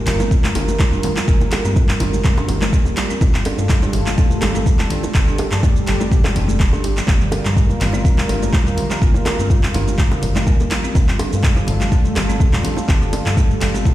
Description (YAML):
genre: afro house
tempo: 124 BPM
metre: 4/4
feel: swing 54% on 16ths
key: G minor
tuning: A4 = 440 Hz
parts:
  - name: warm analog pad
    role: sustained chords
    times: 0.0-13.9 s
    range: G3 to Bb4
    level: -25 LUFS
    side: right 1 dB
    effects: chorus, sidechain pumping
  - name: folk marimba with medium hard mallets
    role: arpeggios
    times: 0.1-13.9 s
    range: D3 to D4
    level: -25 LUFS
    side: right 1 dB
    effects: sidechain pumping, ping-pong delay
  - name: round analog bass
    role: bass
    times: 0.1-13.9 s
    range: F1 to G2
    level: -21 LUFS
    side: equal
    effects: sidechain pumping
  - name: deep house drum kit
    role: drums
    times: 0.1-13.9 s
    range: handclaps, hi-hat, shaker, toms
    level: -23 LUFS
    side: equal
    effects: none
  - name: congas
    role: percussion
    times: 0.1-13.9 s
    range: none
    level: -26 LUFS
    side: left 3 dB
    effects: none
  - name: bongos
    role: percussion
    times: 0.2-13.8 s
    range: none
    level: -29 LUFS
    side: right 3 dB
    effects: none
  - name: electronic kick drum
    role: drums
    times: 0.3-13.9 s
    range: none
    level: -15 LUFS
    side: equal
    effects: none
room: little or no reverb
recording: played on a big sound system in a bare room, stone room reverb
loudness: -14 LUFS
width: side -14 dB against mid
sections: 0.0-13.9 A section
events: none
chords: 0.0 Gm7; 3.2 Fadd9/G; 7.1 Gm7; 11.0 Fadd9/G